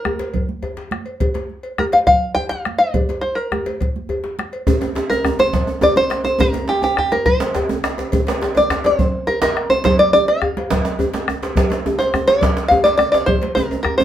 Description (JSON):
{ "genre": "west african traditional, West African drum ensemble", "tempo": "139 BPM (dotted quarters)", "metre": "12/8", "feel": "straight", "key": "Bb major pentatonic", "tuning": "A4 = 444 Hz", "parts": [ { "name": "open-back banjo", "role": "melody", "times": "0.0-14.0 s", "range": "G4 to G5", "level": "-16 LUFS", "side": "equal", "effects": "none" }, { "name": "bombo", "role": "percussion", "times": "0.1-14.0 s", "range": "none", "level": "-22 LUFS", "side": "left 1 dB", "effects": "none" }, { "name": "congas", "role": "percussion", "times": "0.1-14.0 s", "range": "none", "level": "-26 LUFS", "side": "right 4 dB", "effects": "none" }, { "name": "djembe", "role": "percussion", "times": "0.1-14.0 s", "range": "none", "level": "-24 LUFS", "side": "left 2 dB", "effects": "none" }, { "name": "cowbell", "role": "percussion", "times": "0.2-14.0 s", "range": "none", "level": "-30 LUFS", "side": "left 1 dB", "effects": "none" }, { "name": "djembe", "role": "percussion", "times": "4.7-14.0 s", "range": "none", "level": "-23 LUFS", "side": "right 3 dB", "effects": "none" } ], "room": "wet small room reverb, RT60 0.6 s", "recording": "band playing live in one room", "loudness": "-15 LUFS", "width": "side -11 dB against mid", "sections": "0.0-4.7 A section; 4.7-14.0 B section", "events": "none", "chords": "none", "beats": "0.34 0.78 | 1.21 1.64 2.08 2.51 | 2.94 3.37 3.81 4.24 | 4.67 5.10 5.53 5.96 | 6.40 6.83 7.26 7.69 | 8.12 8.55 8.98 9.41 | 9.84 10.27 10.70 11.13 | 11.56 11.99 12.42 12.85 | 13.28 13.71" }